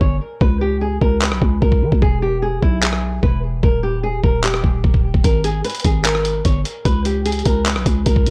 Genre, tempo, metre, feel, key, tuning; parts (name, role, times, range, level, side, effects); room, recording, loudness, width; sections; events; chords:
hip hop, trap; 149 BPM; 4/4; half-time; A4 = 440 Hz
flamenco guitar; melody; 0.0-8.3 s; E4 to C#5; -25 LUFS; equal; low-pass filter, tape echo
growling 808-style bass; bass; 0.0-8.3 s; D#1 to E3; -22 LUFS; equal
dusty soul sampler-style drum kit; drums; 0.0-8.3 s; handclaps, hi-hat, kick drum, rim click; -19 LUFS; equal
digital ambience; dry, gritty hardware recording; -17 LUFS; mono
0.0-8.3 A section
break 0.0-5.2
0.4 C#7(no3); 2.0 E; 3.6 D#; 5.2 G#sus2; 6.9 C#7(no3)